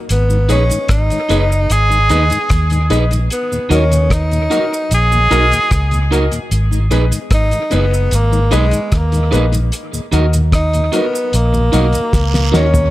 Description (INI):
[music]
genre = roots reggae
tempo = 75 BPM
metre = 4/4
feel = straight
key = G# minor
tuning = A4 = 441 Hz
[part]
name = breathy tenor saxophone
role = melody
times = 0.1-12.9 s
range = G#3 to G#4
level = -17 LUFS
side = equal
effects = tape echo
[part]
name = vintage muted fingered electric bass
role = bass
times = 0.1-12.9 s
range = F#1 to D#2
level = -14 LUFS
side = equal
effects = none
[part]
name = cloth-damped thuddy drum kit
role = drums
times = 0.1-12.9 s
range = hi-hat, kick drum, rim click, snare drum, toms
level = -19 LUFS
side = equal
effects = dub echo
[part]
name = cabasa and guiro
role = percussion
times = 0.1-12.9 s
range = none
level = -28 LUFS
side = right 4 dB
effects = none
[part]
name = mellow tonewheel organ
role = accompaniment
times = 0.3-12.8 s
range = D#2 to D#4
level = -24 LUFS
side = left 3 dB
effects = slow rotary speaker, dub echo
[part]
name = electric guitar at the edge of break-up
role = accompaniment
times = 0.5-12.7 s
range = D#4 to B4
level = -23 LUFS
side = right 6 dB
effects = tape echo
[part]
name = clear upright piano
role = stabs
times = 0.5-12.7 s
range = D#4 to D#5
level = -23 LUFS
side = left 6 dB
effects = none
[sound]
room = light reverb, studio reverb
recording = none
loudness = -12 LUFS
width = side -16 dB against mid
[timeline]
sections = 0.0-12.9 A section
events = drum fill 12.1-12.9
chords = 0.1 G#m; 3.3 D#m; 6.5 G#m; 9.7 D#m